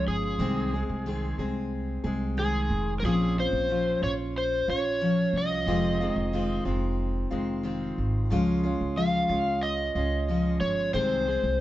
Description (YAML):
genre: pop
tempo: 91 BPM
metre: 4/4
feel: straight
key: Ab major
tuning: A4 = 441 Hz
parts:
  - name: overdriven slide guitar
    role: melody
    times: 0.0-11.6 s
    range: Ab4 to F5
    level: -28 LUFS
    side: equal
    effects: none
  - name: picked steel-string acoustic guitar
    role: accompaniment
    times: 0.0-11.6 s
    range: F2 to Ab4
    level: -28 LUFS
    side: left 1 dB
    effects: none
  - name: upright bass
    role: bass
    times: 0.0-11.6 s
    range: F1 to Db2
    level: -31 LUFS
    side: right 1 dB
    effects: none
room: moderate stone room reverb, RT60 1.1 s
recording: band playing live in one room, nothing above 7.9 kHz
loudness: -25 LUFS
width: side -14 dB against mid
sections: 0.0-11.6 A section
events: none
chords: 0.4 Ab/C; 3.0 Bbmadd9; 5.7 Fm7; 8.3 Db; 10.9 Ab/C